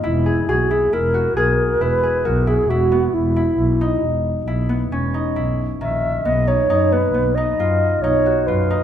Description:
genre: contemporary instrumental, contemporary.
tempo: 135 BPM.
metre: 7/4.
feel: straight.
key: unclear.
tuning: A4 = 440 Hz.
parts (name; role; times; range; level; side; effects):
mellow reedy alto flute; melody; 0.0-8.8 s; E4 to E5; -19 LUFS; right 1 dB; none.
Celtic harp; arpeggios; 0.0-8.8 s; Eb3 to G#4; -22 LUFS; left 2 dB; none.
dark double bass; bass; 0.0-8.8 s; E1 to F#2; -21 LUFS; equal; none.
room: moderate concert hall reverb, RT60 2.0 s.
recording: dark, warm production.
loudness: -16 LUFS.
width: side -9 dB against mid.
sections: 0.0-8.8 A section.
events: none.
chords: 0.0 E; 6.3 B.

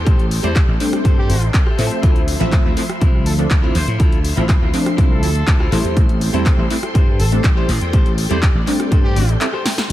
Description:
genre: filtered disco house.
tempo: 122 BPM.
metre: 4/4.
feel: straight.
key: unclear.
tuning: A4 = 440 Hz.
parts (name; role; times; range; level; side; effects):
string machine, full ensemble; sustained chords; 0.0-9.9 s; F3 to C6; -28 LUFS; equal; ensemble chorus, sidechain pumping, low-pass filter.
slap bass; bass; 0.0-9.9 s; A1 to A2; -19 LUFS; equal; sidechain pumping, low-pass filter.
clean electric guitar; riff; 0.1-9.9 s; E4 to A5; -28 LUFS; left 4 dB; sidechain pumping, low-pass filter, dub echo.
electronic kick drum; drums; 0.1-9.0 s; none; -15 LUFS; equal; none.
punchy analog drum machine; drums; 0.1-9.9 s; crash cymbal, handclaps, hi-hat, rim click, snare drum; -25 LUFS; left 1 dB; dub echo.
warm trumpet section; melody; 0.4-9.4 s; G4 to C5; -30 LUFS; equal; sidechain pumping, low-pass filter, dub echo.
funky polysynth comp; accompaniment; 0.4-9.5 s; F3 to E5; -23 LUFS; equal; chorus, phaser, sidechain pumping, low-pass filter, dub echo.
room: digital ambience.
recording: echo-heavy mix.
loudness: -13 LUFS.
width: side -14 dB against mid.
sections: 0.0-9.9 A section.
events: clean electric guitar fill 1.0-2.0, 8.9-9.9; break 9.4-9.9; drum fill 9.7.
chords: 0.0 Am7; 2.0 Dm9; 5.7 Am7.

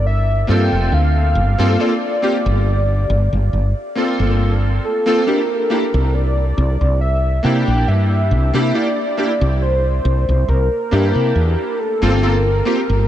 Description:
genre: vaporwave.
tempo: 69 BPM.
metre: 4/4.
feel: swing 53% on 16ths.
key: G dorian.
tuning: A4 = 438 Hz.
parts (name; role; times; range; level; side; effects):
warm velvety synth lead; melody; 0.0-13.1 s; A4 to G5; -21 LUFS; equal; chorus, tape echo.
woody fretless electric bass; bass; 0.0-13.1 s; F1 to C3; -16 LUFS; equal; tube saturation.
bright electric grand piano; accompaniment; 0.5-12.8 s; Bb3 to A4; -20 LUFS; equal; ensemble chorus, tape echo.
room: moderate huge ambient reverb, RT60 4.2 s.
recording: dreamy mix soaked in reverb, cassette tape, nothing above 10.3 kHz.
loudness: -14 LUFS.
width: side -12 dB against mid.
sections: 0.0-13.1 A section.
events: none.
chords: 0.0 Gm11; 5.3 C9; 11.8 Gm11.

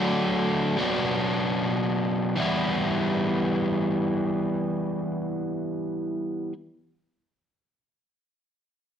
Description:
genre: rock.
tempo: free time.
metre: none.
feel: none.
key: E minor.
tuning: A4 = 438 Hz.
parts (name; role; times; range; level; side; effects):
crunchy overdriven guitar; riff; 0.0-6.5 s; B2 to E4; -24 LUFS; equal; none.
room: wet studio reverb, RT60 0.9 s.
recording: none.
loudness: -24 LUFS.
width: side -8 dB against mid.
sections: 0.0-2.4 A section; 2.4-5.0 B section.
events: slowing down 0.0-2.4.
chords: 0.0 D; 0.8 Bm; 2.4 Em.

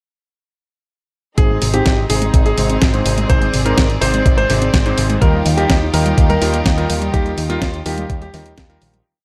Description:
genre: italo disco.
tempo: 125 BPM.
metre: 4/4.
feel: straight.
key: Eb major.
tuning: A4 = 442 Hz.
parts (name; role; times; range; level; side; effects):
clear grand piano; melody; 1.4-9.0 s; F4 to C5; -24 LUFS; equal; tape echo.
rich chamber string section; sustained chords; 1.4-9.0 s; Eb3 to D5; -26 LUFS; equal; none.
warbly dusty pluck; arpeggios; 1.4-9.0 s; C3 to Eb4; -27 LUFS; equal; none.
bright electric grand piano; stabs; 1.4-9.0 s; Ab2 to C5; -26 LUFS; equal; low-pass filter.
picked electric bass with an envelope filter; bass; 1.4-9.0 s; Ab1 to Eb2; -22 LUFS; equal; tube saturation.
clean 12-bit digital drum machine; drums; 1.4-9.0 s; hi-hat, snare drum; -23 LUFS; equal; none.
electronic kick drum; drums; 1.4-8.7 s; none; -17 LUFS; equal; none.
room: light reverb, digital ambience.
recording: none.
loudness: -15 LUFS.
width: mono.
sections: 1.4-9.1 verse.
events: filter sweep on electric grand piano 1.4-9.1; fade-out 6.5-9.1.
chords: 1.4 Ab; 5.2 Ebadd9.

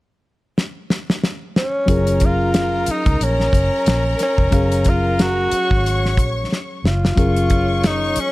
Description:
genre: lush 1970s-style soul.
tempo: 91 BPM.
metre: 4/4.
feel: swing 58% on 16ths.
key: F# major.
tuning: A4 = 438 Hz.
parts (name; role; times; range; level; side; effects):
damped 70s drum kit; drums; 0.6-8.3 s; hi-hat, kick drum, snare drum; -19 LUFS; equal; none.
breathy tenor saxophone; melody; 1.6-8.3 s; C#4 to F#4; -20 LUFS; equal; none.
warm studio string section; second line; 1.9-8.3 s; A#4 to C#6; -27 LUFS; left 2 dB; none.
reed electric piano; accompaniment; 1.9-8.3 s; F#3 to E#5; -24 LUFS; left 2 dB; none.
vintage muted fingered electric bass; bass; 1.9-8.2 s; E#1 to C#2; -20 LUFS; equal; none.
room: small room ambience.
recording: none.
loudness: -16 LUFS.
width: side -19 dB against mid.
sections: 0.0-1.9 A section; 1.9-7.2 B section; 7.2-8.3 C section.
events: drum fill 0.6-1.9, 6.5-7.2.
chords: 0.0 N.C.; 1.9 F#maj7; 6.8 N.C.; 7.2 F#maj7.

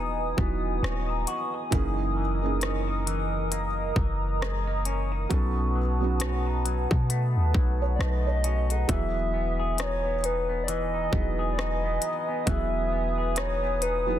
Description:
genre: contemporary R&B.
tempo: 67 BPM.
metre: 4/4.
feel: swing 58% on 16ths.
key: E major.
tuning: A4 = 440 Hz.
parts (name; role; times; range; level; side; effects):
felt-muted upright piano; accompaniment; 0.0-14.2 s; E3 to F#5; -34 LUFS; right 7 dB; none.
hollow soft pad; sustained chords; 0.0-14.2 s; A#4 to D#6; -33 LUFS; equal; chorus, sidechain pumping.
electric guitar with an envelope filter; arpeggios; 0.0-14.2 s; F#2 to G#4; -35 LUFS; left 4 dB; tape echo.
warm 808-style bass; bass; 0.0-14.2 s; D#1 to B2; -28 LUFS; equal; none.
trap drum kit; drums; 0.4-14.1 s; hi-hat, kick drum, rim click; -31 LUFS; left 1 dB; overdrive.
hollow clarinet-like synth lead; melody; 7.9-14.2 s; B4 to E5; -30 LUFS; equal; chorus, tape echo.
room: light reverb, digital ambience.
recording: dense, heavily limited modern master.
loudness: -24 LUFS.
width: side -11 dB against mid.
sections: 0.0-8.9 A section; 8.9-14.2 B section.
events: none.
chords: 0.0 Emaj7; 1.7 F#13; 5.3 B7; 8.9 Emaj7.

